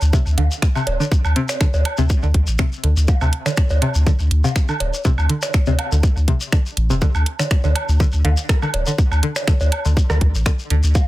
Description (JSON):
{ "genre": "minimal techno", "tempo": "122 BPM", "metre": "4/4", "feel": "swing 54% on 16ths", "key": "unclear", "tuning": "A4 = 445 Hz", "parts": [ { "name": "saturated sub bass", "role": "bass", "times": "0.0-10.9 s", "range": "D1 to D2", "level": "-17 LUFS", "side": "equal", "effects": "tube saturation, sidechain pumping" }, { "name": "shekere", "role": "percussion", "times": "0.0-11.1 s", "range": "none", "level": "-30 LUFS", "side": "left 3 dB", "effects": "none" }, { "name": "string-like resonator pluck", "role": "riff", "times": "0.1-10.7 s", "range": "C3 to D3", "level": "-24 LUFS", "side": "equal", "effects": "chorus, phaser, sidechain pumping, dub echo" }, { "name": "electronic kick drum", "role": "drums", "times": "0.1-11.1 s", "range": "none", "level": "-16 LUFS", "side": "equal", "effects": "overdrive" }, { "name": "garage drum kit", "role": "drums", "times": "0.4-10.8 s", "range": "finger snaps, hi-hat", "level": "-24 LUFS", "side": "right 1 dB", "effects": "overdrive, soft clipping on snare" }, { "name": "electronic cowbell, woodblock and rim click", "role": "percussion", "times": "0.4-11.1 s", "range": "none", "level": "-26 LUFS", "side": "right 2 dB", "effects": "tape echo" } ], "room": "little or no reverb", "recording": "dense, heavily limited modern master", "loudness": "-16 LUFS", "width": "side -17 dB against mid", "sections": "0.0-11.1 A section", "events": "none", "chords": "0.0 D5" }